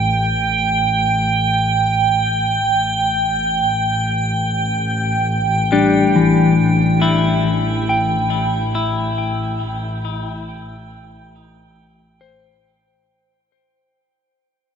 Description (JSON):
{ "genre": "ambient", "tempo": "69 BPM", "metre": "3/4", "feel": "straight", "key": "unclear", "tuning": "A4 = 441 Hz", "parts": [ { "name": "warm studio double bass section", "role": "bass", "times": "0.0-13.0 s", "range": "A1", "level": "-21 LUFS", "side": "equal", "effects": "none" }, { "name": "drifting glass-harmonics texture", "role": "texture", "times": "0.0-13.1 s", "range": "G5", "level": "-19 LUFS", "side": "right 3 dB", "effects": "chorus, built-in reverb, shimmer reverb" }, { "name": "clean electric guitar", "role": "arpeggios", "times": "5.7-14.2 s", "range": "E3 to G5", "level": "-16 LUFS", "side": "left 4 dB", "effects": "ping-pong delay" } ], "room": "wet huge ambient reverb, RT60 8.3 s", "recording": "none", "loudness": "-15 LUFS", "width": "side -7 dB against mid", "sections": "0.0-13.1 A section", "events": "fade-out 6.2-13.1", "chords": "0.0 Gsus2/A; 2.7 C/A (rootless)" }